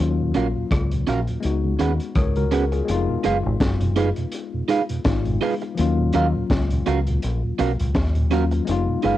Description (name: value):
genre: lovers rock reggae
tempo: 83 BPM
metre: 4/4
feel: swing 56% on 16ths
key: unclear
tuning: A4 = 440 Hz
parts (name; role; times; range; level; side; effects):
- bright tine electric piano; accompaniment; 0.0-9.2 s; F3 to Db5; -26 LUFS; left 7 dB; overdrive, medium stereo tremolo, cassette tape, tape echo
- deep dub fingered electric bass; bass; 0.0-9.2 s; F1 to Eb2; -22 LUFS; equal; none
- mellow tonewheel organ; accompaniment; 0.2-9.2 s; Eb2 to Gb4; -28 LUFS; right 4 dB; slow rotary speaker, cassette tape
- electric guitar at the edge of break-up; stabs; 0.3-9.2 s; Db4 to Gb5; -23 LUFS; right 6 dB; wide subtle chorus, cassette tape, plate reverb
- crunchy breakbeat drum kit; drums; 0.3-9.2 s; hi-hat, kick drum, rim click, snare drum; -25 LUFS; equal; cassette tape, tape echo
room: moderate booth ambience, RT60 0.2 s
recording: home recording on cassette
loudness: -19 LUFS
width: side -13 dB against mid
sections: 0.0-2.9 A section; 2.9-9.2 B section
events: none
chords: 0.0 Ebm9; 1.4 Db7sus4; 2.9 Fm7b5; 5.8 Ebm9; 8.7 Fm7b5